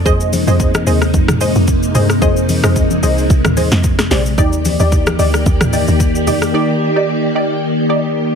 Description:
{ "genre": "amapiano", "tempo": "111 BPM", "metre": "4/4", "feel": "swing 55% on 16ths", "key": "unclear", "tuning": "A4 = 442 Hz", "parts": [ { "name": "soft string machine", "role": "sustained chords", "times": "0.0-8.4 s", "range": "C3 to D5", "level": "-17 LUFS", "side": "left 1 dB", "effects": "ensemble chorus, sidechain pumping" }, { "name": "woody log drum bass", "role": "bass", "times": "0.0-6.5 s", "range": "Bb1 to G2", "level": "-16 LUFS", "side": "equal", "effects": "none" }, { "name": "punchy chord stab", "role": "stabs", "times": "0.1-8.0 s", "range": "Eb4 to Eb5", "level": "-19 LUFS", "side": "right 1 dB", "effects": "chorus, ping-pong delay" }, { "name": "deep house drum kit", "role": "drums", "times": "0.1-6.5 s", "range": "hi-hat, kick drum, rim click, shaker, snare drum, toms", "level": "-16 LUFS", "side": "equal", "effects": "overdrive" }, { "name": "congas", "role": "percussion", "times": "0.3-6.4 s", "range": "none", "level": "-23 LUFS", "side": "left 2 dB", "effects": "none" } ], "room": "digital ambience", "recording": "heavily compressed radio sound", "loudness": "-11 LUFS", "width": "side -6 dB against mid", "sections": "0.0-8.4 A section", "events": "none", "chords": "0.0 Bb9sus4; 3.8 Bb13; 4.4 Ebmaj7" }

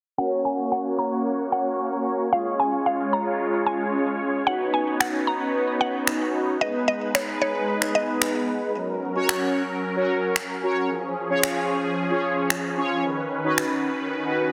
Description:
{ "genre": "dance-pop", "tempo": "112 BPM", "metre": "4/4", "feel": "straight", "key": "F# major", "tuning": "A4 = 440 Hz", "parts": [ { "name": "mallet-like synth pluck", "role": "melody", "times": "0.2-8.1 s", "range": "C#5 to A#5", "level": "-29 LUFS", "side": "equal", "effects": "chorus, low-pass filter, digital delay" }, { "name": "mellow synth brass", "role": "accompaniment", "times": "0.2-14.5 s", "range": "B3 to C#5", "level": "-28 LUFS", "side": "equal", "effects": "chorus, phaser, low-pass filter" }, { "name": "filtered supersaw swell", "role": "sustained chords", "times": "0.2-14.5 s", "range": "D#3 to C#5", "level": "-31 LUFS", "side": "equal", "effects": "low-pass filter" }, { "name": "electronic finger snaps", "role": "drums", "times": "5.0-13.7 s", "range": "none", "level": "-29 LUFS", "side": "equal", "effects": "none" } ], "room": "moderate lush hall reverb, RT60 2.5 s", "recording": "heavily compressed radio sound, multiband compression", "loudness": "-24 LUFS", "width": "mono", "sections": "0.2-8.8 A section; 8.8-14.5 B section", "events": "filter sweep 0.2-8.8", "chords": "0.2 F#; 2.3 C#; 4.5 Badd9; 6.6 G#m; 8.8 F#; 10.9 C#; 13.0 Badd9" }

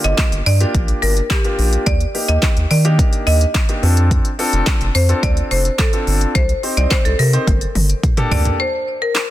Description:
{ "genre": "dance-pop", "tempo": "107 BPM", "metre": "4/4", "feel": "straight", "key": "G minor", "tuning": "A4 = 442 Hz", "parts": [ { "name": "marimba with hard mallets", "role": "melody", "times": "0.0-9.3 s", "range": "G4 to Eb5", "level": "-21 LUFS", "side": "equal", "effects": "digital delay" }, { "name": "warm concert grand piano", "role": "accompaniment", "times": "0.0-8.6 s", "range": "D3 to C5", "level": "-23 LUFS", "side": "left 1 dB", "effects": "sidechain pumping" }, { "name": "round analog bass", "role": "bass", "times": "0.0-8.5 s", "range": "F1 to Eb3", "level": "-15 LUFS", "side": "equal", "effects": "sidechain pumping" }, { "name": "deep house drum kit", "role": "drums", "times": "0.0-9.3 s", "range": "handclaps, hi-hat, kick drum, snare drum, toms", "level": "-18 LUFS", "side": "equal", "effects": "none" } ], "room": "digital ambience", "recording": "dense, heavily limited modern master", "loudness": "-14 LUFS", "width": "side -14 dB against mid", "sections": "0.0-8.6 A section", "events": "drum fill 7.5-8.6", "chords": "0.0 Gm7; 1.9 Ebmaj7; 3.8 F6; 6.4 Cm; 7.5 Gmadd9; 8.6 N.C." }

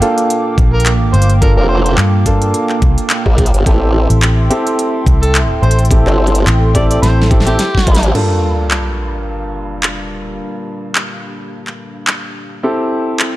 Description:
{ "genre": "glitch hop", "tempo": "107 BPM", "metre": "4/4", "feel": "swing 56% on 16ths", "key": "G dorian", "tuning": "A4 = 440 Hz", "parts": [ { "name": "dark analog pad", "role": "sustained chords", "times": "0.0-13.4 s", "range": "Bb3 to D6", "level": "-24 LUFS", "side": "right 3 dB", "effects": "chorus, vintage 12-bit sampler grit, sidechain pumping" }, { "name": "clear baby grand piano", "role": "stabs", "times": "0.0-13.4 s", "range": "G2 to A4", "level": "-18 LUFS", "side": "equal", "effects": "sidechain pumping, low-pass filter, dub echo" }, { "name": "pop drum kit", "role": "drums", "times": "0.0-13.3 s", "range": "crash cymbal, handclaps, hi-hat, rim click, snare drum", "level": "-19 LUFS", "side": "equal", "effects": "small room ambience" }, { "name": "vintage muted fingered electric bass", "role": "bass", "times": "0.6-7.6 s", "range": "G1 to G2", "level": "-12 LUFS", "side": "equal", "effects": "none" }, { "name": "electronic kick drum", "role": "drums", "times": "0.6-8.0 s", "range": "none", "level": "-12 LUFS", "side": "equal", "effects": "small room ambience" }, { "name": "overdriven harmonica", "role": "melody", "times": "0.7-8.1 s", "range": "G4 to D5", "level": "-22 LUFS", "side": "right 1 dB", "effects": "dub echo" }, { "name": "formant-sweep wobble bass", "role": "bass", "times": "1.6-8.1 s", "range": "F1 to Bb1", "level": "-12 LUFS", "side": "equal", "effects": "chorus, tube saturation" }, { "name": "sub drop", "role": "sound effects", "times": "8.1-10.4 s", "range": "none", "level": "-20 LUFS", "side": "equal", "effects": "none" } ], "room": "light reverb, digital ambience", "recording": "dark, warm production", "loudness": "-11 LUFS", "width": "side -16 dB against mid", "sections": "0.0-8.1 A section; 8.1-13.4 B section", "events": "drum fill 7.0-8.1; band accent 8.0; impact 8.1-10.4; filter sweep on analog synth pad 8.1-13.4", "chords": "0.0 Gm7; 3.7 Am7; 8.1 Gm7; 12.6 Am7" }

